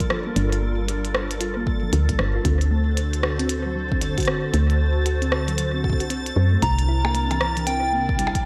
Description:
IDM; 115 BPM; 4/4; swing 62% on 16ths; A4 = 440 Hz
hollow soft pad; sustained chords; 0.0-8.5 s; C3 to C5; -31 LUFS; equal; ensemble chorus
thumb-piano-like synth pluck; arpeggios; 0.0-8.3 s; E3 to F#4; -32 LUFS; equal; chorus, analog delay
woody FM bass; bass; 0.0-8.4 s; G1 to F#2; -25 LUFS; equal
electronic kick drum; drums; 0.0-8.4 s; -28 LUFS; equal; studio reverb
glitchy drum kit; drums; 0.0-8.4 s; hi-hat, percussion blips, rim click; -30 LUFS; equal; studio reverb, analog delay
bubbling stepped-filter texture; texture; 0.0-8.5 s; A6; -35 LUFS; equal; chorus, built-in reverb
soft struck synth lead; melody; 6.6-8.5 s; G5 to Bb5; -27 LUFS; equal; chorus, analog delay
light reverb, digital ambience; echo-heavy mix; -22 LUFS; mono
0.0-8.5 A section
0.0 Gm7; 2.5 D7; 6.6 C7

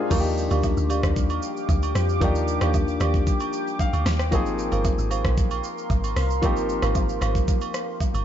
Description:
amapiano; 114 BPM; 4/4; straight; Eb major; A4 = 442 Hz
warm grand piano; accompaniment; 0.0-8.2 s; F3 to F5; -28 LUFS; left 4 dB
deep dark ambient pad; sustained chords; 0.0-8.2 s; G4 to D6; -31 LUFS; right 1 dB; chorus, built-in reverb, sidechain pumping
marimba with medium mallets; stabs; 0.1-7.3 s; G4 to F5; -32 LUFS; right 3 dB; ping-pong delay
deep log drum bass; bass; 0.1-8.2 s; G1 to F2; -24 LUFS; equal
smooth R&B drum kit; drums; 0.1-8.2 s; crash cymbal, hi-hat, kick drum, rim click, shaker, snare drum; -25 LUFS; equal
agogo bells and woodblock; percussion; 0.1-8.2 s; -35 LUFS; right 9 dB
little or no reverb; nothing above 7.6 kHz; -21 LUFS; side -10 dB against mid
0.1-8.2 A section
drop 0.1-8.2; grand piano fill 3.5-4.3
0.1 Ebmaj9; 4.3 Ab69

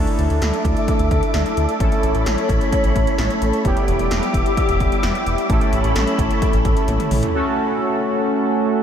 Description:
synth-pop; 130 BPM; 4/4; straight; A4 = 440 Hz
analog synth brass; accompaniment; 0.0-8.8 s; G3 to A4; -20 LUFS; right 1 dB; chorus
soft string machine; sustained chords; 0.0-7.3 s; G4 to D6; -24 LUFS; left 1 dB; phaser, ensemble chorus
round analog bass; bass; 0.0-7.2 s; E1 to D2; -21 LUFS; equal
80s electronic pad drums; drums; 0.1-7.3 s; hi-hat, kick drum, snare drum, toms; -22 LUFS; equal; gated reverb on snare and toms
moderate huge ambient reverb, RT60 7.9 s; dreamy mix soaked in reverb; -16 LUFS; side -8 dB against mid
0.0-7.3 A section; 7.3-8.8 B section
drum fill 6.9-7.3
0.0 Dsus2; 1.8 Aadd9; 3.6 Em7; 5.5 Aadd9; 7.3 F#m

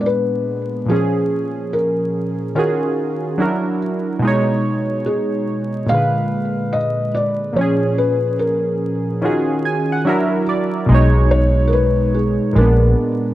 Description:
lo-fi hip hop; 72 BPM; 4/4; swing 65% on 16ths; A4 = 440 Hz
felt-muted upright piano; melody; 0.0-13.3 s; G#4 to E#5; -21 LUFS; left 1 dB; low-pass filter
warm analog keys; accompaniment; 0.0-13.3 s; A#2 to G#5; -18 LUFS; right 1 dB; chorus, low-pass filter
vintage muted fingered electric bass; bass; 10.9-12.9 s; A#1 to B1; -14 LUFS; equal
moderate plate reverb, RT60 2.6 s; vinyl crackle; -15 LUFS; side -14 dB against mid
0.0-10.9 A section; 10.9-13.3 B section
synth keys fill 9.2-10.9
0.0 A#7b9; 0.9 A#m7; 2.6 D#m11; 3.4 F#aug7; 4.2 B69; 5.9 A#7b9; 7.6 A#m7; 9.2 D#m11; 10.1 F#aug7; 10.9 B69; 12.6 A#7b9

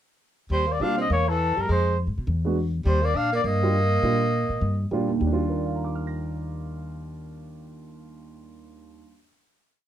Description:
jazz, small-group swing and bop; 205 BPM; 4/4; swing 61% on 8ths; Eb major; A4 = 439 Hz
mellow trumpet; melody; 0.5-4.9 s; A4 to F5; -25 LUFS; left 2 dB
growling tenor saxophone; second line; 0.5-4.9 s; E3 to D4; -28 LUFS; right 4 dB
upright bass; bass; 0.5-9.0 s; Eb2 to Cb3; -26 LUFS; left 1 dB
warm upright piano; accompaniment; 0.8-9.3 s; Eb2 to Bb6; -29 LUFS; right 4 dB
light reverb; -22 LUFS; side -11 dB against mid
0.5-5.2 A section; 5.2-7.5 final chord
0.5 Ebmaj9; 1.1 A6b9/E; 1.7 Fm; 2.3 E9; 2.9 Ebmaj9

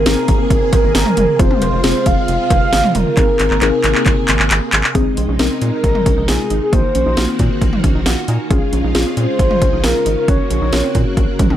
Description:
synth-pop; 135 BPM; 4/4; straight; A4 = 440 Hz
mellow horn-like synth lead; melody; 0.0-11.2 s; Ab4 to F5; -19 LUFS; right 1 dB; chorus, analog delay
string machine, violins; sustained chords; 0.0-11.6 s; C3 to Ab4; -22 LUFS; equal; ensemble chorus
rubbery square bass; bass; 0.0-11.6 s; F1 to Bb2; -19 LUFS; equal
muted felt-like synth keys; accompaniment; 0.1-11.4 s; Bb3 to Ab5; -21 LUFS; left 5 dB; chorus
house drum kit; drums; 0.1-11.6 s; cowbell, handclaps, hi-hat, kick drum, snare drum, toms; -16 LUFS; equal
soft round pluck; arpeggios; 5.0-11.6 s; C4 to Gb4; -26 LUFS; right 3 dB; chorus, analog delay
light reverb; -12 LUFS; side -11 dB against mid
0.0-5.0 A section; 5.0-11.6 B section
drum fill 3.2-5.0; synth keys fill 7.8-8.5
0.0 Abadd9; 1.4 Fm; 3.2 Abadd9; 5.0 Ab/Bb; 6.7 Ebm/Bb; 8.5 Db/Bb; 10.3 Gb/Bb

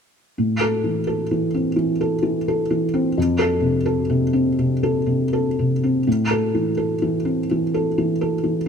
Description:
neoclassical minimalist piano; 85 BPM; 4/4; rubato; A minor; A4 = 441 Hz
felt-muted upright piano; solo; 0.4-8.7 s; F2 to A4; -18 LUFS; equal
light reverb; close, detailed microphones; -18 LUFS; side -6 dB against mid
0.4-6.1 A section; 6.1-8.7 B section
0.4 Am; 3.2 F; 6.1 Am

